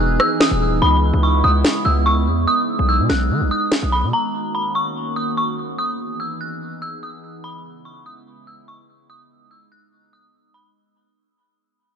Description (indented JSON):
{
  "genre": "hip hop, drill",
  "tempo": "145 BPM",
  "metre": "4/4",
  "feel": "half-time",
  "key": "unclear",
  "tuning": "A4 = 439 Hz",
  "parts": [
    { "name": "dark detuned synth bell", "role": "melody", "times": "0.0-10.7 s", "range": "Bb5 to Gb6", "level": "-21 LUFS", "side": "equal", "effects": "chorus, dub echo" },
    { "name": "warbly tape-like pad", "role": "sustained chords", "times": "0.0-10.7 s", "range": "Db3 to G#4", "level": "-24 LUFS", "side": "right 1 dB", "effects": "chorus, built-in reverb" },
    { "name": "distorted 808-style bass", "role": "bass", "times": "0.0-4.1 s", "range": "D#1 to D#3", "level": "-18 LUFS", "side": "equal", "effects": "distortion" },
    { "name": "electronic rim click and snare drum", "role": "drums", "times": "0.2-3.8 s", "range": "none", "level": "-21 LUFS", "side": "equal", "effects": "vintage 12-bit sampler grit" }
  ],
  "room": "light reverb",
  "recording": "echo-heavy mix, nothing above 10.4 kHz",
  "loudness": "-16 LUFS",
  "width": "side -7 dB against mid",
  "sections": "0.0-10.8 A section",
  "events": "break 0.0-4.1; fade-out 0.0-10.8",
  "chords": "0.0 Emaj7; 0.8 Dbm7; 2.5 B6; 4.1 Ebm7; 5.8 Emaj7; 7.4 Dbm7; 9.1 B6"
}